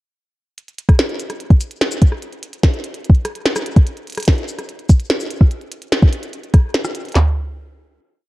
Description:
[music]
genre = IDM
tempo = 146 BPM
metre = 4/4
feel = straight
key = none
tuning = none
[part]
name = glitchy drum kit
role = drums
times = 0.6-7.2 s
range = hi-hat, rim click, shaker, snare drum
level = -21 LUFS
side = equal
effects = digital delay
[part]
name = glitchy drum kit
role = drums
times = 0.9-7.2 s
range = handclaps, kick drum, snare drum, toms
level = -10 LUFS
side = equal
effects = none
[sound]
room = light reverb, digital ambience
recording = dark, warm production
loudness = -14 LUFS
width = side -18 dB against mid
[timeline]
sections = 0.6-7.2 chorus; 7.2-8.3 final hit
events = none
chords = none

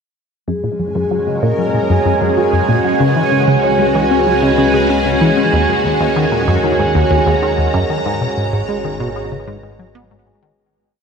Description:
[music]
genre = ambient, sequencer-driven space music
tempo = 95 BPM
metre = 4/4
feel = straight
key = G# minor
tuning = A4 = 436 Hz
[part]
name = string machine, full ensemble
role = sustained chords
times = 0.5-10.6 s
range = G#3 to A#5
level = -18 LUFS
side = left 1 dB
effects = phaser, ensemble chorus, shimmer reverb
[part]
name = vibraphone with soft mallets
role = arpeggios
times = 0.5-10.6 s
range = G#3 to G#5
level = -19 LUFS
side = moving between left 2 dB and right 5 dB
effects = auto-pan, low-pass filter, analog delay, shimmer reverb
[part]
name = tight sequenced synth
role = riff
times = 0.5-10.5 s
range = D#2 to C#4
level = -17 LUFS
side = left 1 dB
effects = chorus, phaser, analog delay
[part]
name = analog drone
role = bass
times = 1.2-10.6 s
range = G#1 to F#2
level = -29 LUFS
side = equal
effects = chorus
[part]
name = bubbling stepped-filter texture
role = texture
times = 1.3-10.6 s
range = G#5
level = -21 LUFS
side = right 6 dB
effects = chorus, built-in reverb, shimmer reverb
[sound]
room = wet huge ambient reverb, RT60 8.1 s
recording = none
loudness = -12 LUFS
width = side -6 dB against mid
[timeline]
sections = 0.5-10.6 A section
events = fade-in on synth drone 0.5-10.6; filter sweep on vibraphone 0.5-10.6; fade-out 7.2-10.6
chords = 0.5 F#; 3.0 C#7(no3); 5.5 D#m7; 8.1 G#m7

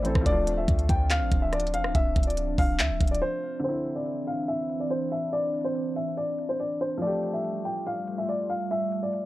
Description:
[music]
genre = hip hop, trap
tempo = 142 BPM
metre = 4/4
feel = half-time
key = C major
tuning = A4 = 440 Hz
[part]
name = dark baby grand piano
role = melody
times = 0.0-9.3 s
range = C5 to G5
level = -29 LUFS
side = left 1 dB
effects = tape echo
[part]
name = felt-muted upright piano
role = accompaniment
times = 0.0-9.3 s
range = D3 to A4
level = -35 LUFS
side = left 1 dB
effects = none
[part]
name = dark analog pad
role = sustained chords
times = 0.0-9.3 s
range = E3 to C5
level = -34 LUFS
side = right 2 dB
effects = chorus, phaser
[part]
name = clean 808-style bass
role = bass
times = 0.0-3.2 s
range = D1 to D2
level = -27 LUFS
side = equal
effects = none
[part]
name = trap drum kit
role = drums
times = 0.0-9.2 s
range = handclaps, hi-hat, kick drum, rim click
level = -26 LUFS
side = equal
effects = none
[sound]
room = little or no reverb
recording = dry, gritty hardware recording, cassette tape, low-pass filter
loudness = -25 LUFS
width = side -16 dB against mid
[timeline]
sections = 0.0-3.6 A section; 3.6-9.3 B section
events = break 3.2-3.6; filter sweep 3.6-9.3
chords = 0.3 Dm; 3.6 Cadd9; 7.0 Fadd9

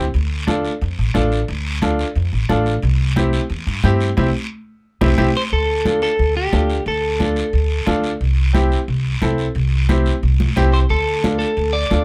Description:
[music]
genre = latin, cumbia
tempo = 178 BPM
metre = 4/4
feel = straight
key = D minor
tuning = A4 = 440 Hz
[part]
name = bright upright piano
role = accompaniment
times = 0.0-12.0 s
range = C4 to A4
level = -23 LUFS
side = equal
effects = none
[part]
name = upright bass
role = bass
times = 0.0-12.0 s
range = A1 to G2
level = -21 LUFS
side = equal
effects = none
[part]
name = guiro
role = percussion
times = 0.1-12.0 s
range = none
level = -33 LUFS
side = equal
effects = none
[part]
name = congas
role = percussion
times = 0.5-12.0 s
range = none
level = -25 LUFS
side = equal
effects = none
[part]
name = electric guitar at the edge of break-up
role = melody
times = 5.4-7.8, 10.7-12.0 s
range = G4 to D5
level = -22 LUFS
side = equal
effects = spring reverb, slapback echo
[sound]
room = light reverb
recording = none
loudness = -18 LUFS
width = mono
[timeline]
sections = 0.0-5.5 A section; 5.5-12.0 B section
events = band accent 4.2-5.5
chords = 0.1 Dm; 2.8 C; 5.5 Dm; 8.2 C; 10.9 Dm

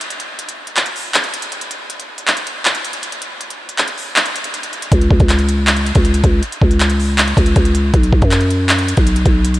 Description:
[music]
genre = hip hop, trap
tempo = 159 BPM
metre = 4/4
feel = half-time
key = unclear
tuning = A4 = 441 Hz
[part]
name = trap drum kit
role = drums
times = 0.0-9.6 s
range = handclaps, hi-hat, kick drum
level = -15 LUFS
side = equal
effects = overdrive, vintage 12-bit sampler grit
[part]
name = growling 808-style bass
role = bass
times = 4.9-9.6 s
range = B1 to F#2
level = -14 LUFS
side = equal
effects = none
[sound]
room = light reverb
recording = none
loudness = -13 LUFS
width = side -16 dB against mid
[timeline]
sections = 0.0-9.6 A section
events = break 0.0-4.9; kick muted 3.4-4.9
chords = none

